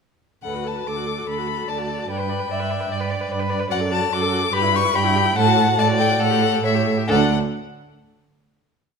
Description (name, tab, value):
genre	quick classical-period movement for string quartet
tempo	129-149 BPM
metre	4/4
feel	rubato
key	D major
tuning	A4 = 440 Hz
part	rich violin	melody	0.4-7.3 s	E5 to D6	-23 LUFS	left 8 dB	none
part	rich viola	accompaniment	0.4-7.3 s	D4 to D5	-27 LUFS	right 3 dB	none
part	warm cello	bass	0.4-7.3 s	D2 to A2	-23 LUFS	right 5 dB	none
part	rich violin	second line	0.5-7.3 s	A4 to G5	-25 LUFS	left 2 dB	none
room	wet recital hall reverb, RT60 1.3 s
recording	minimal, uncompressed stereo recording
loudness	-18 LUFS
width	side -5 dB against mid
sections	0.4-7.1 A section; 7.1-8.8 final chord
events	none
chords	0.4 D; 2.1 G; 3.7 D/F#; 4.5 Em/G; 5.4 D/A; 6.2 A5; 7.1 D5